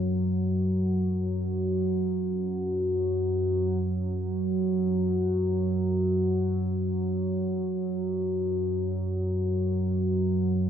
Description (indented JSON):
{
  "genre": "ambient",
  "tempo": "free time",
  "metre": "none",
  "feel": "none",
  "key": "unclear",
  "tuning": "A4 = 440 Hz",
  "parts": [
    { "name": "analog drone", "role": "solo", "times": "0.0-10.7 s", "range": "F#2 to F#3", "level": "-25 LUFS", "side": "equal", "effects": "chorus, tape echo" }
  ],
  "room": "wet cathedral reverb, RT60 5.7 s",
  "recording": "worn, warbling old tape, cassette tape, warbly pitch drift",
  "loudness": "-25 LUFS",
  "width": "side -9 dB against mid",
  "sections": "0.0-3.8 A section; 3.8-10.7 B section",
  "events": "none",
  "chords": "none"
}